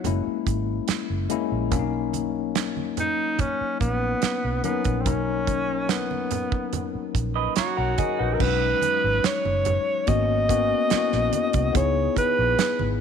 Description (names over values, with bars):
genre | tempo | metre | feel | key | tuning
lush 1970s-style soul | 72 BPM | 4/4 | straight | B major | A4 = 440 Hz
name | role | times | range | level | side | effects
breathy alto saxophone | melody | 0.0-12.9 s | F#3 to D#5 | -25 LUFS | right 2 dB | none
bright tine electric piano | accompaniment | 0.0-13.0 s | F#3 to F#5 | -27 LUFS | left 12 dB | fast stereo tremolo
damped 70s drum kit | drums | 0.0-12.8 s | crash cymbal, hi-hat, kick drum, snare drum | -27 LUFS | right 5 dB | none
congas | percussion | 0.0-13.0 s | none | -35 LUFS | right 8 dB | none
vintage muted fingered electric bass | bass | 0.1-13.0 s | F#1 to C#2 | -27 LUFS | right 1 dB | none
electric guitar through a small old amp | riff | 7.4-8.6 s | D#4 to D#5 | -29 LUFS | right 13 dB | none
room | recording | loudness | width
light reverb, small room ambience | 1960s-style stereo with parts hard left and right | -21 LUFS | side -7 dB against mid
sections
0.0-8.4 A section; 8.4-13.0 B section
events
none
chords
0.1 F#7; 1.7 Bmaj9; 8.4 B69; 10.1 G#m11; 11.7 C#m9